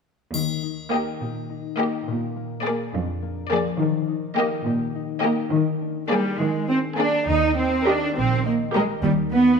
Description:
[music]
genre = cinematic, playful, whimsical film cue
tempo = 69 BPM (dotted quarters)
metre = 6/8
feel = straight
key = Eb major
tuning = A4 = 440 Hz
[part]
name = concert harp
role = arpeggios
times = 0.3-9.6 s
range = Bb2 to Eb5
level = -28 LUFS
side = left 11 dB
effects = none
[part]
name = rich studio cello section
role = bass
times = 0.3-9.6 s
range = Eb2 to Eb4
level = -23 LUFS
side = right 3 dB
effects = none
[part]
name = triangle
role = percussion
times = 0.3-1.5 s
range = none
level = -33 LUFS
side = left 5 dB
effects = none
[part]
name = clear studio violin section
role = melody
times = 0.9-9.0 s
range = D5 to Eb5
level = -32 LUFS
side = left 4 dB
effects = none
[part]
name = rich studio violin section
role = second line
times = 0.9-9.0 s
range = G4 to Bb4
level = -28 LUFS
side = left 4 dB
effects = none
[part]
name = warm studio viola section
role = accompaniment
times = 0.9-9.0 s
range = Bb3 to G4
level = -26 LUFS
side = right 2 dB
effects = none
[part]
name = clear studio double bass section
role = bass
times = 7.3-9.6 s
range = Bb1 to Eb2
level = -26 LUFS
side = right 6 dB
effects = none
[sound]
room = light reverb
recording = none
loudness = -21 LUFS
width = side -6 dB against mid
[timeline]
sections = 0.3-7.3 A section; 7.3-9.6 B section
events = none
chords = 0.3 Eb; 2.1 Bb7; 3.8 Eb; 5.5 Bb7/Eb; 7.3 Eb; 9.0 G/Eb

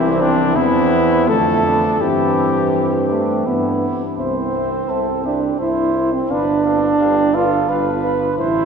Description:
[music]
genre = classical, brass quintet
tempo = 85 BPM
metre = 3/4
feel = straight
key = C major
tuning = A4 = 441 Hz
[part]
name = dark trumpet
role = melody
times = 0.0-8.7 s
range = D4 to F5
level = -21 LUFS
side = left 4 dB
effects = none
[part]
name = dark trumpet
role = second line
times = 0.0-8.7 s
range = A3 to C5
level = -24 LUFS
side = right 4 dB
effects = none
[part]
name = warm French horn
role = accompaniment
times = 0.0-8.7 s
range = A3 to C5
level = -24 LUFS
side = left 3 dB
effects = none
[part]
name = warm trombone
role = accompaniment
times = 0.0-8.7 s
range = D3 to F4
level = -19 LUFS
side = right 3 dB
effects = none
[part]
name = clear bass trombone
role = bass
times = 0.0-8.7 s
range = G1 to G2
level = -22 LUFS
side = right 1 dB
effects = none
[sound]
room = wet cathedral reverb, RT60 4.5 s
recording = heard from further back in the room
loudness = -15 LUFS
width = side -6 dB against mid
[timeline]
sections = 0.0-4.2 A section; 4.2-8.7 B section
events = none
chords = 0.0 C; 1.3 Dm/F; 2.0 C/G; 3.5 G; 4.2 C; 6.3 G7

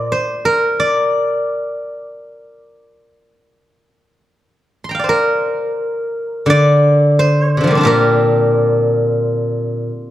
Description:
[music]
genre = chinese traditional, Chinese solo plucked strings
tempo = 80-91 BPM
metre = 4/4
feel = rubato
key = unclear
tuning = A4 = 439 Hz
[part]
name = steel-string zither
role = solo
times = 0.0-10.1 s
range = Bb2 to C6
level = -13 LUFS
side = equal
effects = none
[sound]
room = moderate recital hall reverb, RT60 1.7 s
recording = dark, warm production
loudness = -13 LUFS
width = side -13 dB against mid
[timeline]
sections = 0.0-5.1 A section; 5.1-10.1 B section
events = none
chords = none

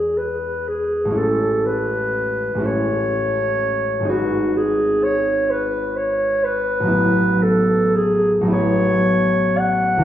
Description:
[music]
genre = classical, impressionist duo for clarinet and harp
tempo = 36-43 BPM (dotted quarters)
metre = 6/8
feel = rubato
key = unclear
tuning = A4 = 439 Hz
[part]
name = dark clarinet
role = melody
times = 0.0-10.0 s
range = F#4 to F#5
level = -19 LUFS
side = left 1 dB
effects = none
[part]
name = concert harp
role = accompaniment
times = 0.0-10.0 s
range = G#1 to B4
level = -20 LUFS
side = right 1 dB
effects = none
[sound]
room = wet recital hall reverb, RT60 1.6 s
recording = heard from further back in the room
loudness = -16 LUFS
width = side -11 dB against mid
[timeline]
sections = 0.0-10.0 A section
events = none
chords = 0.0 Eadd9; 1.2 Amaj7; 4.1 G#m; 6.9 A69

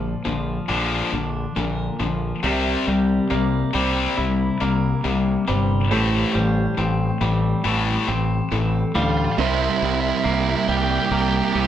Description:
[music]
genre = post-rock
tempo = 69 BPM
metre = 4/4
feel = straight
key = unclear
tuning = A4 = 440 Hz
[part]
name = pedal steel guitar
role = sustained chords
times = 0.0-11.7 s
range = A3 to C6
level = -30 LUFS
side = right 2 dB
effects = none
[part]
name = twangy electric guitar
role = arpeggios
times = 0.0-11.7 s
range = A2 to E4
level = -27 LUFS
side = right 1 dB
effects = warbly pitch drift
[part]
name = twelve-string electric guitar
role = arpeggios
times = 0.0-11.6 s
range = G4 to E5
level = -34 LUFS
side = right 4 dB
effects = harmonic tremolo
[part]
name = tight distorted guitar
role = riff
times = 0.0-9.3 s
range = A2 to C4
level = -22 LUFS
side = left 5 dB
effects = distortion
[part]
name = growling fingered electric bass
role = bass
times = 0.0-11.7 s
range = G1 to D2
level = -24 LUFS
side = right 1 dB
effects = overdrive
[part]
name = octave-fuzz lead guitar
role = melody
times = 9.0-11.7 s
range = E4 to G4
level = -24 LUFS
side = right 2 dB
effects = distortion
[part]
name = thick fuzz guitar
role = riff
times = 9.4-11.7 s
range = C3 to E4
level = -22 LUFS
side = right 8 dB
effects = distortion
[sound]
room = wet studio reverb, RT60 0.9 s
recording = band playing live in one room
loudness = -19 LUFS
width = side -10 dB against mid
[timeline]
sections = 0.0-9.4 A section; 9.4-11.7 B section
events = build-up 0.0-9.4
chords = 0.0 Bbmaj7; 2.4 C7; 5.9 Am7; 9.4 C7

